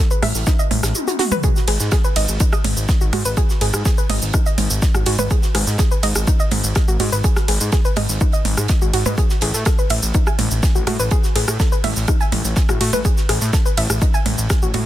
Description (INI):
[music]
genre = melodic techno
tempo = 124 BPM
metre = 4/4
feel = straight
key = G# phrygian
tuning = A4 = 440 Hz
[part]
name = soft round pluck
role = arpeggios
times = 0.0-14.8 s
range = D#4 to G#5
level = -25 LUFS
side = equal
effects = chorus, sidechain pumping, digital delay
[part]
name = techno drum kit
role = drums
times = 0.1-14.8 s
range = hi-hat, percussion blips, ride cymbal, rim click, shaker, toms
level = -22 LUFS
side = right 1 dB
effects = soft clipping on snare, sidechain pumping on perc, sidechain pumping on hats, sidechain pumping on toms, sidechain pumping on cymbals
[part]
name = fat analog bass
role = bass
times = 0.2-14.8 s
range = G#1 to A2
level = -21 LUFS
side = equal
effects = tube saturation, sidechain pumping
[part]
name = damped 70s drum kit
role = drums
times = 0.2-14.9 s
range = hi-hat, snare drum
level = -33 LUFS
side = right 4 dB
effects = sidechain pumping on hats, high-pass filter on hats, high-pass filter on snare, high-pass filter on room
[part]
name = electronic kick drum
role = drums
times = 0.5-14.6 s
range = none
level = -18 LUFS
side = equal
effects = none
[sound]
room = little or no reverb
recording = dense, heavily limited modern master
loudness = -15 LUFS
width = side -14 dB against mid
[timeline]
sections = 0.0-14.9 A section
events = drum fill 1.0-1.4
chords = 0.0 A5; 1.4 G#m; 9.2 A5